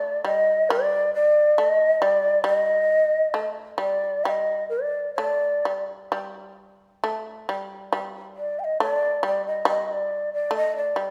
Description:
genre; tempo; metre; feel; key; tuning
japanese traditional, Japanese chamber music; 63-71 BPM; 2/4; rubato; unclear; A4 = 440 Hz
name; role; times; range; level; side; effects
mellow hollow shakuhachi; melody; 0.0-11.1 s; D5 to G5; -23 LUFS; equal; none
shamisen; second line; 0.0-11.1 s; G3 to A3; -30 LUFS; equal; none
room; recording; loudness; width
light reverb; none; -23 LUFS; mono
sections
0.0-11.1 A section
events
none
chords
none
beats
| 0.71 1.59 | 2.46 3.35 | 4.25 5.18 | 6.12 7.04 | 7.93 8.81 | 9.68 10.54

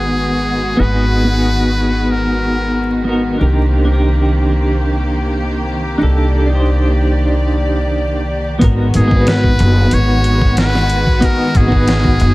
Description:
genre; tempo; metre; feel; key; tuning
trip hop; 92 BPM; 4/4; swing 53% on 16ths; G# minor; A4 = 439 Hz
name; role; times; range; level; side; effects
trumpet with metal mute; melody; 0.0-3.1, 9.0-12.3 s; G#4 to C#5; -21 LUFS; equal; vintage 12-bit sampler grit, tape echo
clean electric guitar; accompaniment; 0.0-12.3 s; B3 to C5; -18 LUFS; equal; tremolo
rich symphonic string section; sustained chords; 0.0-12.3 s; D#3 to D5; -21 LUFS; left 1 dB; low-pass filter
upright bass; bass; 0.0-12.3 s; F#1 to C2; -15 LUFS; equal; none
dusty soul sampler-style drum kit; drums; 8.6-12.3 s; hi-hat, kick drum, snare drum; -15 LUFS; equal; none
room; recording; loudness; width
studio ambience; vinyl crackle; -12 LUFS; side -19 dB against mid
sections
0.0-8.6 A section; 8.6-12.3 B section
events
none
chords
0.0 G#m7; 3.4 Cm7; 8.6 G#m7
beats
0.14 | 0.79 1.44 2.09 2.74 | 3.40 4.05 4.70 5.35 | 6.00 6.66 7.31 7.96 | 8.61 9.27 9.92 10.57 | 11.22 11.87

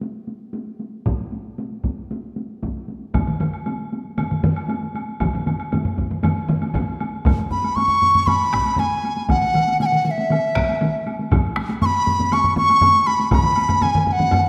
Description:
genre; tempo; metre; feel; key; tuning
japanese traditional, taiko drum ensemble; 117 BPM; 4/4; straight; unclear; A4 = 440 Hz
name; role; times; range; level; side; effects
taiko ensemble; percussion; 0.0-14.4 s; none; -29 LUFS; equal; none
taiko ensemble; percussion; 1.1-13.4 s; none; -24 LUFS; equal; none
taiko ensemble; percussion; 3.1-14.4 s; none; -27 LUFS; equal; none
taiko ensemble; percussion; 3.1-14.4 s; none; -27 LUFS; equal; none
woodblock; percussion; 3.1-14.4 s; none; -35 LUFS; equal; none
mellow hollow large dizi; melody; 7.5-14.5 s; E5 to C#6; -19 LUFS; equal; none
room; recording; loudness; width
wet scoring stage reverb, RT60 1.7 s; none; -20 LUFS; mono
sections
0.0-7.3 A section; 7.3-14.5 B section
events
speeding up 0.0-14.5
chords
none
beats
0.01 0.54 | 1.06 1.58 2.10 2.62 | 3.14 3.66 4.18 4.70 | 5.21 5.73 6.24 6.75 | 7.27 7.78 8.29 8.79 | 9.30 9.81 10.31 10.82 | 11.32 11.82 12.33 12.83 | 13.33 13.82 14.32

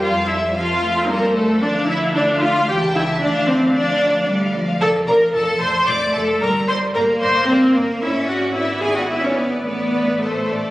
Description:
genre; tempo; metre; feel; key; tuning
quick classical-period movement for string orchestra; 112 BPM; 3/4; straight; unclear; A4 = 439 Hz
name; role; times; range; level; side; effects
rich studio violin section; melody; 0.0-10.7 s; A4 to A5; -27 LUFS; left 2 dB; none
rich studio violin section; second line; 0.0-10.7 s; A4 to D6; -24 LUFS; left 1 dB; none
rich studio viola section; accompaniment; 0.0-10.7 s; A3 to D5; -18 LUFS; equal; none
clear studio cello section; bass; 0.0-10.7 s; E3 to C#4; -24 LUFS; equal; none
rich studio double bass section; bass; 0.0-10.7 s; F1 to F2; -29 LUFS; equal; none
room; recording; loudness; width
wet scoring stage reverb, RT60 1.8 s; recorded on a phone in the room, club reverb, compression; -16 LUFS; side -17 dB against mid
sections
0.0-10.7 A section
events
none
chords
0.0 F; 1.6 Dm; 2.7 A7/C#; 3.2 Dm; 4.8 Dm/F; 6.4 Gmadd11; 8.0 E13/G#; 9.7 D5/A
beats
| 0.02 0.56 1.09 | 1.63 2.16 2.69 | 3.22 3.75 4.28 | 4.82 5.35 5.88 | 6.41 6.95 7.49 | 8.02 8.56 9.10 | 9.66 10.23

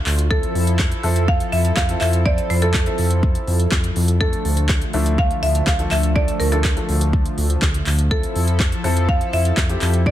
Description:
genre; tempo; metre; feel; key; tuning
dance-pop; 123 BPM; 4/4; straight; F major; A4 = 440 Hz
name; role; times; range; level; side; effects
buzzing marimba with hard mallets; melody; 0.0-10.1 s; A4 to F5; -25 LUFS; right 1 dB; digital delay
chorused pulse-width pad; sustained chords; 0.0-10.1 s; D3 to C5; -27 LUFS; equal; sidechain pumping
round analog bass; bass; 0.1-10.1 s; D2 to F2; -19 LUFS; equal; sidechain pumping
deep house drum kit; drums; 0.1-10.1 s; handclaps, hi-hat, kick drum, snare drum; -21 LUFS; equal; none
warm baby grand piano; accompaniment; 0.3-10.1 s; E3 to C5; -27 LUFS; left 2 dB; sidechain pumping
room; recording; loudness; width
digital ambience; dense, heavily limited modern master; -16 LUFS; side -12 dB against mid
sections
0.0-10.1 A section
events
none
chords
0.3 Fmaj7; 4.2 Dm; 8.1 Fmaj7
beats
| 0.31 0.79 1.28 1.77 | 2.26 2.75 3.23 3.72 | 4.21 4.70 5.18 5.67 | 6.16 6.65 7.13 7.62 | 8.11 8.60 9.09 9.57 | 10.06

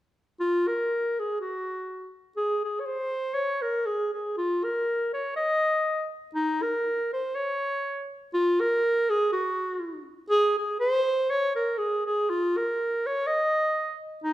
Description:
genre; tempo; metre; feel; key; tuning
alpine folk; 121 BPM; 2/4; swing 55% on 8ths; unclear; A4 = 440 Hz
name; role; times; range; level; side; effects
warm clarinet; solo; 0.4-14.3 s; Eb4 to Eb5; -24 LUFS; equal; none
room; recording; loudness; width
wet recital hall reverb, RT60 1.3 s; none; -24 LUFS; side -14 dB against mid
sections
0.4-8.3 A section; 8.3-14.3 A section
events
none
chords
none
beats
| 0.39 0.89 | 1.39 1.88 | 2.38 2.87 | 3.37 3.86 | 4.36 4.86 | 5.36 5.85 | 6.35 6.84 | 7.34 7.83 | 8.33 8.82 | 9.32 9.81 | 10.30 10.79 | 11.29 11.78 | 12.28 12.77 | 13.27 13.76 | 14.25

